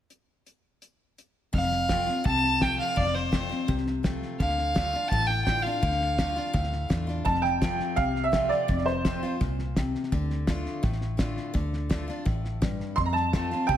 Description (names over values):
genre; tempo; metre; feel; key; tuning
honky-tonk and classic country; 168 BPM; 4/4; straight; F major; A4 = 440 Hz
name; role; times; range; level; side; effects
damped 70s drum kit; drums; 0.1-13.8 s; hi-hat, kick drum, snare drum; -30 LUFS; equal; none
clear fiddle; melody; 1.5-6.9 s; C5 to A5; -27 LUFS; equal; none
picked steel-string acoustic guitar; accompaniment; 1.5-13.8 s; F2 to F4; -31 LUFS; left 3 dB; none
vintage muted fingered electric bass; bass; 1.5-13.8 s; F1 to F2; -31 LUFS; equal; none
bright upright piano; second line; 7.2-9.4, 13.0-13.8 s; C5 to C6; -26 LUFS; right 4 dB; none
room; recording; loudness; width
light reverb; none; -24 LUFS; side -11 dB against mid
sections
0.1-1.5 A section; 1.5-7.3 B section; 7.3-13.8 C section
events
upright piano solo 7.3-13.8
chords
0.1 N.C.; 1.5 F; 4.4 Dm; 7.3 F; 10.1 Dm; 13.0 F